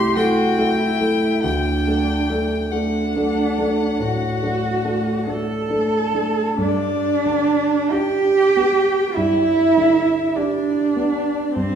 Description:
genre	classical, slow romantic movement for piano trio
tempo	44-51 BPM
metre	4/4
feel	rubato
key	G major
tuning	A4 = 440 Hz
part	rich violin	melody	0.0-11.8 s	C5 to C6	-26 LUFS	left 7 dB	none
part	warm cello	second line	0.0-11.8 s	C4 to A4	-19 LUFS	right 3 dB	none
part	warm concert grand piano	accompaniment	0.0-11.8 s	C2 to A4	-22 LUFS	equal	none
room	wet recital hall reverb, RT60 1.6 s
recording	heard from further back in the room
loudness	-17 LUFS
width	side -8 dB against mid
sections	0.0-6.6 A section; 6.6-11.8 B section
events	none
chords	0.0 Am7/C; 1.4 D; 6.6 G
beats	0.16 | 1.43 2.73 4.01 5.27 | 6.57 7.91 9.16 10.35 | 11.54

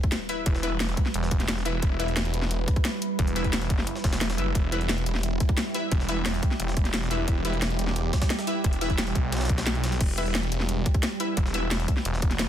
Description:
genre	dark technical drum and bass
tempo	176 BPM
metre	4/4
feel	straight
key	E minor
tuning	A4 = 440 Hz
part	deep dark ambient pad	sustained chords	0.1-12.5 s	G3 to B4	-33 LUFS	right 3 dB	chorus, built-in reverb, sidechain pumping
part	drum and bass drum kit	drums	0.0-12.5 s	crash cymbal, hi-hat, snare drum	-30 LUFS	left 1 dB	overdrive, studio ambience
part	electronic kick drum	drums	0.0-12.3 s	none	-24 LUFS	equal	overdrive, studio ambience
part	sub drop	sound effects	0.2-0.5 s	none	-45 LUFS	equal	none
part	jungle sampler-style drum kit	drums	0.1-12.5 s	hi-hat, snare drum	-38 LUFS	equal	overdrive, high-pass filter on hats, studio ambience, high-pass filter on snare
part	orchestra-hit-like synth stab	stabs	0.3-11.7 s	E4 to E5	-32 LUFS	left 2 dB	built-in reverb, ping-pong delay
part	snarling distorted saw bass	bass	0.5-12.5 s	E1 to B1	-28 LUFS	equal	distortion, tube saturation, sidechain pumping
room	digital ambience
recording	dense, heavily limited modern master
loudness	-23 LUFS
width	side -10 dB against mid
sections	0.0-12.5 A section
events	impact 0.0-0.5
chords	0.0 Em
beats	0.12 | 0.46 0.80 1.14 1.48 | 1.82 2.17 2.51 2.85 | 3.19 3.53 3.87 4.21 | 4.55 4.89 5.23 5.58 | 5.92 6.26 6.60 6.94 | 7.28 7.62 7.96 8.30 | 8.64 8.98 9.32 9.67 | 10.01 10.35 10.69 11.03 | 11.37 11.71 12.05 12.39

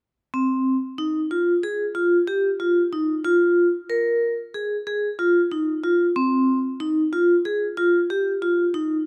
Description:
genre	contemporary instrumental, contemporary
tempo	186 BPM (eighths)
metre	9/8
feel	straight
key	Ab major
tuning	A4 = 440 Hz
part	vibraphone with hard mallets	arpeggios	0.3-9.0 s	C4 to Bb4	-22 LUFS	equal	none
room	light reverb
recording	close, detailed microphones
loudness	-22 LUFS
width	mono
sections	0.3-9.1 A section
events	none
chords	none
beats	| 0.34 0.66 0.98 1.31 1.63 1.96 2.28 2.60 2.92 | 3.25 3.57 3.90 4.22 4.54 4.87 5.19 5.51 5.84 | 6.16 6.48 6.81 7.13 7.45 7.78 8.10 8.42 8.75

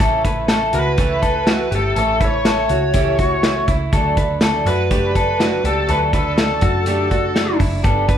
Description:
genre	jangly indie pop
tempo	122 BPM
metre	4/4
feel	straight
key	D major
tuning	A4 = 440 Hz
part	fingerpicked twelve-string acoustic guitar	accompaniment	0.0-8.2 s	G2 to E4	-23 LUFS	right 4 dB	none
part	electric guitar through a small old amp	arpeggios	0.0-8.2 s	E4 to B4	-21 LUFS	left 4 dB	none
part	vintage muted picked electric bass	bass	0.0-8.2 s	F#1 to F#2	-23 LUFS	equal	none
part	modern studio drum kit	drums	0.0-8.2 s	hi-hat, kick drum, snare drum	-19 LUFS	equal	none
part	bluesy overdriven lead guitar	melody	0.7-7.6 s	A4 to C#5	-21 LUFS	right 1 dB	distortion
room	moderate recital hall reverb, RT60 1.3 s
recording	recorded in a church or concert hall, vinyl crackle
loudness	-15 LUFS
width	side -9 dB against mid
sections	0.0-8.2 A section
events	none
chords	0.0 A; 3.9 D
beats	| 0.00 0.49 0.98 1.47 | 1.96 2.45 2.94 3.43 | 3.92 4.41 4.90 5.39 | 5.88 6.37 6.86 7.35 | 7.84

